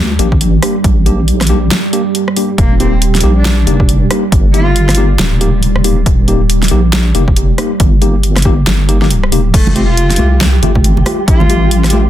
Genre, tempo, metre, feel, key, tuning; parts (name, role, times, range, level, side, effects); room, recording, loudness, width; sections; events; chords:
deep dubstep; 138 BPM; 4/4; swing 60% on 16ths, half-time; A4 = 438 Hz
deep dark ambient pad; sustained chords; 0.1-12.1 s; G3; -19 LUFS; right 2 dB; chorus, built-in reverb
deep soft wobble bass; bass; 0.0-12.1 s; Eb1 to D2; -12 LUFS; equal; chorus
mellow tine electric piano; stabs; 0.2-12.0 s; A3 to G4; -19 LUFS; left 5 dB; medium stereo tremolo, dub echo
deep house drum kit; drums; 0.2-12.0 s; crash cymbal, hi-hat, rim click, snare drum; -17 LUFS; equal; overdrive, small room ambience
electronic kick drum; drums; 0.3-11.4 s; -12 LUFS; equal; overdrive, small room ambience
dark cello; melody; 2.6-4.9, 9.5-11.9 s; A3 to F4; -20 LUFS; equal; dub echo
flickering grainy texture; texture; 10.0-12.1 s; G4; -22 LUFS; right 3 dB; built-in reverb
congas; percussion; 9.7-12.0 s; -18 LUFS; right 5 dB
light reverb, digital ambience; dense, heavily limited modern master; -9 LUFS; side -12 dB against mid
0.0-12.1 A section
0.0 Gm; 2.6 Eb; 9.5 Fadd9